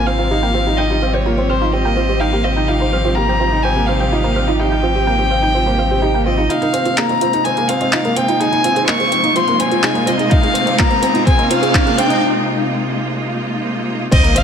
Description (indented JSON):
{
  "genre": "piano and strings electronica",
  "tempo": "126 BPM",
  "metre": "4/4",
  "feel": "straight",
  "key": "Ab major",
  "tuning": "A4 = 441 Hz",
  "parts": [
    { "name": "warm violin", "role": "melody", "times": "0.0-14.4 s", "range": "C5 to Db6", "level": "-18 LUFS", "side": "left 2 dB", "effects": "none" },
    { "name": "bright studio string section", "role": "sustained chords", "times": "0.0-14.4 s", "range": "C3 to G4", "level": "-22 LUFS", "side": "equal", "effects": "low-pass filter" },
    { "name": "round analog bass", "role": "bass", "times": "0.0-14.4 s", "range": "Eb1 to C2", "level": "-21 LUFS", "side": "equal", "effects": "sidechain pumping, high-pass filter" },
    { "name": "soft round pluck", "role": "arpeggios", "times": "0.1-12.2 s", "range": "F4 to F6", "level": "-23 LUFS", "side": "right 4 dB", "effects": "chorus, sidechain pumping, ping-pong delay" },
    { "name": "felt-muted upright piano", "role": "riff", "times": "0.1-14.4 s", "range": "Bb3 to Eb4", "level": "-20 LUFS", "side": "right 1 dB", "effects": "ping-pong delay" },
    { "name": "deep house drum kit", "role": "drums", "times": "6.5-14.4 s", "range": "crash cymbal, handclaps, hi-hat", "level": "-22 LUFS", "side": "left 1 dB", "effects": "low-pass filter on hats, low-pass filter on snare, low-pass filter on cymbals" },
    { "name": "riser and sub drop", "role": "sound effects", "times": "8.5-14.4 s", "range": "none", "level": "-22 LUFS", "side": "equal", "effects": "none" },
    { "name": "electronic kick drum", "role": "drums", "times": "10.3-14.2 s", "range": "none", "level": "-14 LUFS", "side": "equal", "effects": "none" }
  ],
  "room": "moderate scoring stage reverb, RT60 2.0 s",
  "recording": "none",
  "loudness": "-13 LUFS",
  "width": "side -7 dB against mid",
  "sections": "0.0-6.5 A section; 6.5-14.1 B section",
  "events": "build-up 6.5-14.1; filter sweep on string section 6.5-14.1; filter sweep on synth arpeggio sound 6.5-14.1; riser 8.5-12.2; break 12.2-14.1; impact 14.1-14.4",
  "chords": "0.0 Fsus2/Ab; 6.5 Ab69"
}